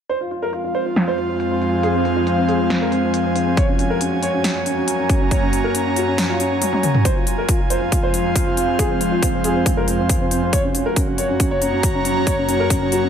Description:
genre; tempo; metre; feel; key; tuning
heavy wobble dubstep; 138 BPM; 4/4; half-time; F phrygian; A4 = 440 Hz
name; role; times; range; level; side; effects
dark concert grand piano; melody; 0.1-13.1 s; C4 to Db5; -23 LUFS; right 1 dB; digital delay
evolving wavetable pad; sustained chords; 0.5-13.1 s; F2 to Db4; -23 LUFS; left 1 dB; chorus, built-in reverb, sidechain pumping
big-room dance drum kit; drums; 0.1-13.0 s; hi-hat, snare drum, toms; -22 LUFS; left 1 dB; overdrive, high-pass filter on hats, low-pass filter on hats, high-pass filter on snare, low-pass filter on snare, high-pass filter on toms, low-pass filter on toms
airy breathy pad; texture; 0.1-13.1 s; F4 to Bb5; -22 LUFS; right 1 dB; chorus, sidechain pumping
electronic kick drum; drums; 3.6-12.8 s; none; -20 LUFS; equal; overdrive
room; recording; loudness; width
light reverb, digital ambience; none; -16 LUFS; side -8 dB against mid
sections
0.1-7.1 A section; 7.1-13.1 B section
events
filter sweep on drum 0.1-7.1; kick drops out 6.6-7.1; drum fill 6.6-7.1; build-up 7.1-13.1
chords
0.1 Fm; 3.6 Gb; 7.1 Fm; 10.5 Gb

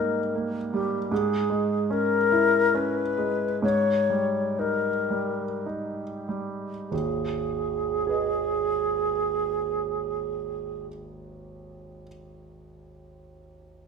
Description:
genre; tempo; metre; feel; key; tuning
classical, romantic duo for flute and grand piano; 44-79 BPM; 3/4; rubato; G# minor; A4 = 440 Hz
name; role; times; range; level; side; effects
mellow baroque flute; melody; 0.0-10.9 s; G4 to C#5; -25 LUFS; left 1 dB; none
clear concert grand piano; accompaniment; 0.0-13.9 s; G#1 to D#5; -30 LUFS; right 1 dB; none
room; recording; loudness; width
wet stone room reverb, RT60 1.3 s; none; -24 LUFS; side -5 dB against mid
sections
0.0-6.9 A section; 6.9-13.8 B section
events
slowing down 0.0-6.9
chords
0.0 D#/G#; 1.1 C#m/G#; 3.6 D#7/G#; 6.9 G#m

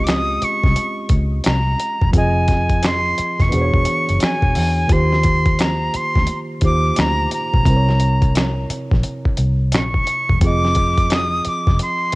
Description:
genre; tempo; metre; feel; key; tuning
R&B, neo-soul; 87 BPM; 4/4; swing 64% on 16ths; C minor; A4 = 440 Hz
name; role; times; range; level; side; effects
breathy bright jazz flute; melody; 0.0-12.2 s; G#5 to Eb6; -20 LUFS; equal; cassette tape
tine electric piano; accompaniment; 0.0-12.2 s; C3 to Eb5; -23 LUFS; right 2 dB; cassette tape
vintage muted fingered electric bass; bass; 0.0-11.8 s; E1 to E2; -19 LUFS; equal; none
dusty soul sampler-style drum kit; drums; 0.1-12.2 s; finger snaps, hi-hat, kick drum, snare drum; -18 LUFS; equal; cassette tape
room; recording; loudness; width
little or no reverb; home recording on cassette; -15 LUFS; side -22 dB against mid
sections
0.0-12.2 A section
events
none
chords
0.0 Dbmaj9#11; 2.1 Fm7; 3.5 E13; 4.9 Eb6; 7.7 C7b9; 10.4 Fm7

